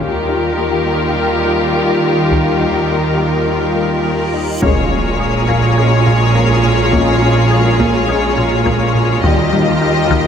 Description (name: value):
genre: cinematic, hybrid orchestral and electronic film score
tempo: 104 BPM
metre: 4/4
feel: straight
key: Bb dorian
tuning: A4 = 440 Hz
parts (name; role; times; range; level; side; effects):
- rich symphonic violin section; melody; 0.0-10.3 s; Bb4 to Eb5; -20 LUFS; left 5 dB; low-pass filter
- rich chamber violin section; second line; 0.0-10.3 s; G4 to Ab4; -21 LUFS; left 3 dB; none
- warm symphonic viola section; accompaniment; 0.0-10.3 s; F4; -22 LUFS; right 1 dB; low-pass filter
- analog string pad; sustained chords; 0.0-10.3 s; G3 to Bb4; -22 LUFS; left 1 dB; ensemble chorus, low-pass filter
- dark French horn section; sustained chords; 0.0-9.5 s; G3 to F4; -22 LUFS; left 4 dB; low-pass filter
- resonant blip pluck; arpeggios; 0.0-10.3 s; Eb3 to Ab4; -23 LUFS; left 2 dB; phaser, low-pass filter, ping-pong delay
- rich symphonic cello section; bass; 0.0-10.3 s; Bb2 to Eb3; -20 LUFS; right 2 dB; none
- rich symphonic double bass section; bass; 0.0-10.3 s; Bb1 to Eb2; -19 LUFS; right 3 dB; none
- taiko ensemble; drums; 0.0-10.3 s; none; -21 LUFS; equal; none
- reverse cymbal and impact; sound effects; 4.4-6.9 s; none; -24 LUFS; equal; none
room: wet scoring stage reverb, RT60 1.6 s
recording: none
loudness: -12 LUFS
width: side -8 dB against mid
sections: 0.0-4.6 A section; 4.6-10.3 B section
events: reverse cymbal 4.4; impact 4.6-6.9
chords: 0.0 Ebadd9; 4.6 Bbm7; 9.2 Ebadd9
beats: | 0.01 0.59 1.16 1.74 | 2.32 2.90 3.47 4.05 | 4.62 5.20 5.78 6.36 | 6.93 7.51 8.09 8.66 | 9.24 9.82